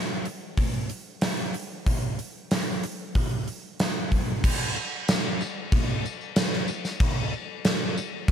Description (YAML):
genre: rock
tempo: 93 BPM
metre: 4/4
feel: straight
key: none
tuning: none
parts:
  - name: gated 80s drum kit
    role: drums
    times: 0.3-8.3 s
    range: crash cymbal, hi-hat, kick drum, snare drum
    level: -24 LUFS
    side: equal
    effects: none
  - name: tambourine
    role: percussion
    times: 4.6-8.1 s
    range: none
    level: -40 LUFS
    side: left 5 dB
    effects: none
room: light reverb, small room ambience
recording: none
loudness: -25 LUFS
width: side -9 dB against mid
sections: 0.0-4.4 A section; 4.4-8.3 A section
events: none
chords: none